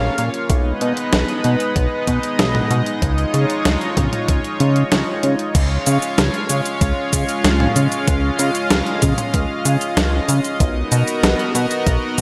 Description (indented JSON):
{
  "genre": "synthwave",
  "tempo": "95 BPM",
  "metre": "4/4",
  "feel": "straight",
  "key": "unclear",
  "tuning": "A4 = 440 Hz",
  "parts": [
    { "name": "chorused pulse-width pad", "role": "sustained chords", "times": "0.0-12.2 s", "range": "Ab3 to F5", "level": "-23 LUFS", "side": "equal", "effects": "sidechain pumping" },
    { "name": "chorused synth bass", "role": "bass", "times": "0.0-12.2 s", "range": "Cb2 to Db3", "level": "-20 LUFS", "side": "equal", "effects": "none" },
    { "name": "clean 12-bit digital drum machine", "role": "drums", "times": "0.2-12.2 s", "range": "crash cymbal, hi-hat, shaker, snare drum, toms", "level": "-23 LUFS", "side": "equal", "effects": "overdrive, gated reverb" },
    { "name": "electronic kick drum", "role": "drums", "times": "0.5-12.2 s", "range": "none", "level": "-22 LUFS", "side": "equal", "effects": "overdrive" }
  ],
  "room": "moderate lush hall reverb, RT60 2.2 s",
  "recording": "bright 1980s-style digital production",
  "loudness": "-18 LUFS",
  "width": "mono",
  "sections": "0.0-5.5 A section; 5.5-12.2 B section",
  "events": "kick drops out 4.9-5.5",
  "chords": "0.5 Abm/Cb; 3.0 Dbadd9; 10.6 Bmaj7",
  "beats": "| 0.50 1.13 1.76 2.39 | 3.02 3.65 4.29 4.92 | 5.55 6.18 6.81 7.44 | 8.08 8.71 9.34 9.97 | 10.60 11.23 11.87"
}